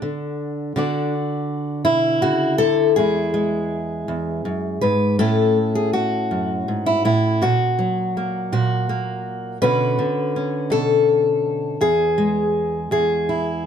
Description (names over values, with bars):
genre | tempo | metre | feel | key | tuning
folk, solo fingerstyle acoustic guitar | 54 BPM (dotted quarters) | 6/8 | straight | A major | A4 = 439 Hz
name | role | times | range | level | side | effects
fingerpicked steel-string acoustic guitar | solo | 0.0-13.7 s | E2 to D5 | -18 LUFS | equal | none
room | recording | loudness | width
moderate studio reverb, RT60 0.8 s | none | -18 LUFS | side -8 dB against mid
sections
0.0-5.2 A section; 5.2-13.7 B section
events
none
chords
0.0 Bm (rootless); 0.8 Dadd9; 3.0 E; 5.2 A; 7.4 F#/A#; 9.6 Bmadd9; 11.8 E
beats
| 0.76 1.85 | 2.96 4.07 | 5.19 6.31 | 7.42 8.52 | 9.61 10.71 | 11.80 12.91